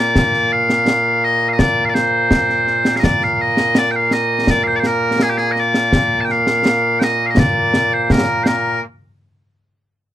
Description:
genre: scottish traditional, Scottish pipe music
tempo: 83 BPM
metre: 2/4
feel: straight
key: Bb major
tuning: A4 = 439 Hz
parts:
  - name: loud bright bagpipes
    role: melody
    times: 0.0-8.8 s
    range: Bb2 to A5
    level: -15 LUFS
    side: equal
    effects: none
  - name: concert snare drum and concert bass drum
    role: drums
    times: 0.2-8.8 s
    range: none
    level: -17 LUFS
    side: equal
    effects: none
room: little or no reverb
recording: dry, close 1970s-style studio recording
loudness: -13 LUFS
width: side -12 dB against mid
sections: 0.0-8.8 A section; 8.8-10.1 B section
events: none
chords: none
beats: | 0.15 0.88 | 1.60 2.32 | 3.05 3.77 | 4.49 5.21 | 5.94 6.66 | 7.38 8.11

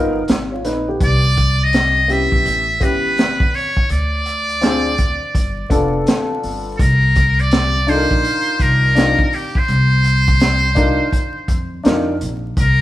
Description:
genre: hip hop, jazz-hop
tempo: 83 BPM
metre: 4/4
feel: swing 64% on 16ths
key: C dorian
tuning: A4 = 440 Hz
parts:
  - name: dark upright piano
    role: accompaniment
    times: 0.0-12.1 s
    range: B3 to Db5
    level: -20 LUFS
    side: left 1 dB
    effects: none
  - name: upright bass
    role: bass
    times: 0.0-12.8 s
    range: F1 to F2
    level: -18 LUFS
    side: equal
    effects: none
  - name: crunchy breakbeat drum kit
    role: drums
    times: 0.3-12.8 s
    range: hi-hat, kick drum, snare drum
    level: -18 LUFS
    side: equal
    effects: none
  - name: trumpet with metal mute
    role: melody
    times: 1.0-12.8 s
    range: G4 to E5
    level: -18 LUFS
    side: equal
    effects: none
room: moderate stone room reverb, RT60 1.5 s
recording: band playing live in one room, vinyl crackle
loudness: -14 LUFS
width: side -15 dB against mid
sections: 0.0-12.6 A section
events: none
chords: 0.0 G7alt; 1.0 C5; 2.5 A7; 3.9 Dm7b5; 5.3 G7; 6.8 Cm11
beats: 0.28 | 1.01 1.73 2.45 3.18 | 3.90 4.62 5.34 6.07 | 6.79 7.51 8.24 8.96 | 9.68 10.40 11.13 11.85 | 12.57

